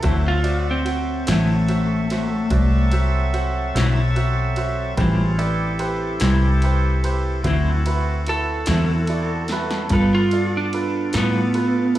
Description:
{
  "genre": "slow blues",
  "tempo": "49 BPM (dotted quarters)",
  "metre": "12/8",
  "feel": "straight",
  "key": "D mixolydian",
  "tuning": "A4 = 440 Hz",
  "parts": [
    { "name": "lightly driven lead guitar", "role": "melody", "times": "0.0-12.0 s", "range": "A3 to A4", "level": "-23 LUFS", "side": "equal", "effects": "plate reverb, slapback echo" },
    { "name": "clean electric guitar", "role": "accompaniment", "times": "0.0-11.4 s", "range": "A2 to A4", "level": "-26 LUFS", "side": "left 3 dB", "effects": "tremolo, plate reverb, slapback echo" },
    { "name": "clear baby grand piano", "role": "accompaniment", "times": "0.0-12.0 s", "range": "E4 to F#5", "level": "-28 LUFS", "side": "right 5 dB", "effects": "plate reverb, slapback echo" },
    { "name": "vintage muted fingered electric bass", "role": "bass", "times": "0.0-12.0 s", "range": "A1 to A2", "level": "-20 LUFS", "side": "equal", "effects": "none" },
    { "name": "punchy analog drum machine", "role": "drums", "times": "0.0-12.0 s", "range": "kick drum, ride cymbal, snare drum", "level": "-29 LUFS", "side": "equal", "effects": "overdrive" },
    { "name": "bright tonewheel organ", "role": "sustained chords", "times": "0.1-12.0 s", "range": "F#3 to E5", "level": "-28 LUFS", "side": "equal", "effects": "slow rotary speaker, plate reverb" }
  ],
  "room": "light reverb",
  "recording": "live gig heard through the venue's PA, club reverb",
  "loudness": "-18 LUFS",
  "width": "side -14 dB against mid",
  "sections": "0.0-12.0 A section",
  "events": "lead electric guitar solo 0.0-12.0; drum fill 9.5-9.9",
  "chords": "0.0 D9; 5.0 Am7; 7.5 D9; 9.9 G9",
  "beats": "| 0.05 1.28 2.52 3.75 | 4.98 6.22 7.45 8.68 | 9.92 11.15"
}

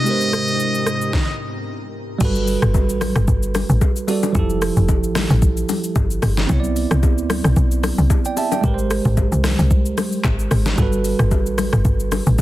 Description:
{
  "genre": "amapiano",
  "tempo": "112 BPM",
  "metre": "4/4",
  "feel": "swing 55% on 16ths",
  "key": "G major",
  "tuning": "A4 = 440 Hz",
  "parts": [
    { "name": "trumpet with metal mute", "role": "melody", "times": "0.0-1.4 s", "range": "Eb5", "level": "-22 LUFS", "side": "equal", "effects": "digital delay" },
    { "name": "bell-like tine electric piano", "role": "accompaniment", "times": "0.0-12.4 s", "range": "F3 to A5", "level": "-22 LUFS", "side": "right 4 dB", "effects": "none" },
    { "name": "ethereal airy pad", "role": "sustained chords", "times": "0.0-1.1 s", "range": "Ab2 to Bb4", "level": "-27 LUFS", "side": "left 3 dB", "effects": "ensemble chorus, built-in reverb, sidechain pumping" },
    { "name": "smooth R&B drum kit", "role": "drums", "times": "0.1-12.4 s", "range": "crash cymbal, handclaps, hi-hat, kick drum, rim click, shaker, snare drum, toms", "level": "-20 LUFS", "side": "equal", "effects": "soft clipping on snare" },
    { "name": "tight log drum bass", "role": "bass", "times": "2.2-12.4 s", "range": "F1 to D2", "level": "-18 LUFS", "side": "equal", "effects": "none" },
    { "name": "congas and bongos", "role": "percussion", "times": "2.2-12.4 s", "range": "none", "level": "-28 LUFS", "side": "left 9 dB", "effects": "none" }
  ],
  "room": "little or no reverb",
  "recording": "dense, heavily limited modern master",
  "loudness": "-16 LUFS",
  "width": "side -15 dB against mid",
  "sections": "0.0-2.2 A section; 2.2-12.4 B section",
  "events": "stop 1.1-2.2; drop 2.2-12.4",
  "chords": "0.1 Abmaj9; 2.2 Gmaj9; 4.4 Fmaj9; 6.5 Cmaj9; 8.6 Abmaj9; 10.8 Gmaj9",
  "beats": "| 0.07 0.60 1.14 1.67 | 2.21 2.74 3.28 3.82 | 4.35 4.89 5.42 5.96 | 6.49 7.03 7.57 8.10 | 8.64 9.17 9.71 10.24 | 10.78 11.32 11.85 12.39"
}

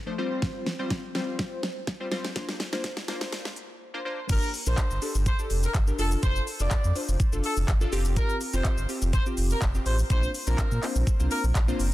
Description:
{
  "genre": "dance-pop",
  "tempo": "124 BPM",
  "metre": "4/4",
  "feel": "straight",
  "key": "G minor",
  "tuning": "A4 = 439 Hz",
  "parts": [
    { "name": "glassy digital keys", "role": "accompaniment", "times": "0.1-11.9 s", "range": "F3 to C5", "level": "-33 LUFS", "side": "left 1 dB", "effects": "chorus, sidechain pumping" },
    { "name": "pop drum kit", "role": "drums", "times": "0.4-11.9 s", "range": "crash cymbal, handclaps, hi-hat, kick drum, shaker, snare drum", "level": "-28 LUFS", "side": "equal", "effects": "none" },
    { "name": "warm horn section", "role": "melody", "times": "4.3-11.4 s", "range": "A4 to D5", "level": "-33 LUFS", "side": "equal", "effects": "dub echo" },
    { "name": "sub bass with octave", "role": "bass", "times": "4.3-11.9 s", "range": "F1 to Bb2", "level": "-26 LUFS", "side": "equal", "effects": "sidechain pumping" }
  ],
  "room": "little or no reverb",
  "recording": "dense, heavily limited modern master, high-pass filter",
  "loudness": "-24 LUFS",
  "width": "side -16 dB against mid",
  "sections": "0.0-4.3 A section; 4.3-11.9 B section",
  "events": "build-up 0.0-4.3; drum fill 0.0-3.8; filter sweep 0.0-4.3; drop 4.3-11.9",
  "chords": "0.2 Fsus2; 2.4 Bbadd9; 4.3 Gm; 6.0 Dm/F; 7.9 Fsus2; 10.1 Bbadd9",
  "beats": "| 0.42 0.91 1.39 1.88 | 2.36 2.84 3.33 3.81 | 4.29 4.78 5.26 5.75 | 6.23 6.71 7.20 7.68 | 8.17 8.65 9.13 9.62 | 10.10 10.59 11.07 11.55"
}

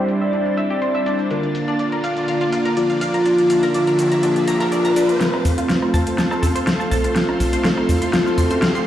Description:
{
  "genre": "progressive house",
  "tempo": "123 BPM",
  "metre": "4/4",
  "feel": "straight",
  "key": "F major",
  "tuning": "A4 = 441 Hz",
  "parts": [
    { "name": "warm velvety synth lead", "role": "melody", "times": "0.0-8.9 s", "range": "F4 to D5", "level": "-21 LUFS", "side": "equal", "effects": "chorus, tremolo, digital delay" },
    { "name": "supersaw pad", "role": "sustained chords", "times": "0.0-8.9 s", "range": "D3 to C6", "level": "-27 LUFS", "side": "equal", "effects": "low-pass filter" },
    { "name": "analog pluck", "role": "arpeggios", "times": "0.0-8.8 s", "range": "D4 to C6", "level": "-26 LUFS", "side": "left 1 dB", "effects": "lush chorus, digital delay" },
    { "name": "soft supersaw", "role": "stabs", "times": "0.0-8.9 s", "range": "D3 to C5", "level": "-22 LUFS", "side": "right 1 dB", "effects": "low-pass filter, digital delay" },
    { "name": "backwards swelling texture", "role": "texture", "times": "0.0-5.2 s", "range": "A6", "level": "-38 LUFS", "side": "equal", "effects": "none" },
    { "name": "big-room dance drum kit", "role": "drums", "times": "0.1-8.8 s", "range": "hi-hat, shaker, snare drum", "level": "-23 LUFS", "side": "left 1 dB", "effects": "overdrive" },
    { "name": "shaker and snare drum", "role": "drums", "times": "0.1-5.1 s", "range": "none", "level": "-36 LUFS", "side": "left 1 dB", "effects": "none" },
    { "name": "riser", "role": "sound effects", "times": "3.1-8.9 s", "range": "none", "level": "-30 LUFS", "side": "equal", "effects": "none" },
    { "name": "cowbell and congas", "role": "percussion", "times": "5.3-8.6 s", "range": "none", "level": "-30 LUFS", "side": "right 1 dB", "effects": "none" },
    { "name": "tight sequencer bass", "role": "bass", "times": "5.5-8.6 s", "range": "C2 to F2", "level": "-20 LUFS", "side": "equal", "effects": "none" }
  ],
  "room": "moderate lush hall reverb, RT60 2.2 s",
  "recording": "played on a big sound system in a bare room, stone room reverb, low-pass filter",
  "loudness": "-16 LUFS",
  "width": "side -11 dB against mid",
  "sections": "0.0-5.2 A section; 5.2-8.9 B section",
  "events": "filter sweep on supersaw synth 0.0-5.2, 5.2-8.9; riser 3.1-5.2; build-up 5.2-8.9; drum fill 5.2-8.9; filter sweep on synth pluck 5.2-8.9",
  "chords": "0.0 Cadd9; 1.3 Bb/D; 5.2 F",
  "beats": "0.33 0.82 | 1.30 1.79 2.28 2.77 | 3.26 3.74 4.23 4.72 | 5.21 5.70 6.18 6.67 | 7.16 7.65 8.13 8.62"
}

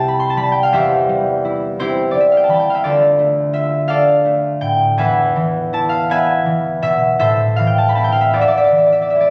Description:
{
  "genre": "classical, solo harp piece",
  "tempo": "56 BPM (dotted quarters)",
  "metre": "6/8",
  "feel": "uneven beats, rubato",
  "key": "unclear",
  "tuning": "A4 = 440 Hz",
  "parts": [
    { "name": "concert harp", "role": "solo", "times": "0.0-9.3 s", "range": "C2 to C6", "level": "-15 LUFS", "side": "equal", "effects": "none" }
  ],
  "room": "wet recital hall reverb, RT60 1.5 s",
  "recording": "recorded on a phone in the room, studio reverb",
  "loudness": "-15 LUFS",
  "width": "mono",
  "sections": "0.0-9.3 A section",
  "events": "none",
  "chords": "0.0 C; 0.7 C/E; 2.9 Dm; 5.0 E; 7.2 Am; 8.4 E",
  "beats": "| 0.73 1.81 | 2.88 3.93 | 5.00 6.09 | 7.20 8.36"
}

